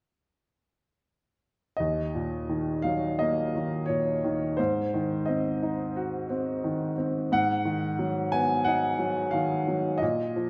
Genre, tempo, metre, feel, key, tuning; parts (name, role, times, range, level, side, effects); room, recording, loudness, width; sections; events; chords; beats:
classical, lyrical solo piano; 88 BPM; 4/4; rubato; A4 = 440 Hz
warm upright piano; solo; 1.8-10.5 s; Eb2 to Ab5; -28 LUFS; equal
moderate recital hall reverb, RT60 1.6 s; -28 LUFS; mono
1.8-10.5 A section
1.8 Ebm; 4.6 Ab7; 7.3 Abm7
| 1.79 2.50 3.20 3.89 | 4.59 5.27 5.95 6.63 | 7.31 7.99 8.66 9.33 | 10.01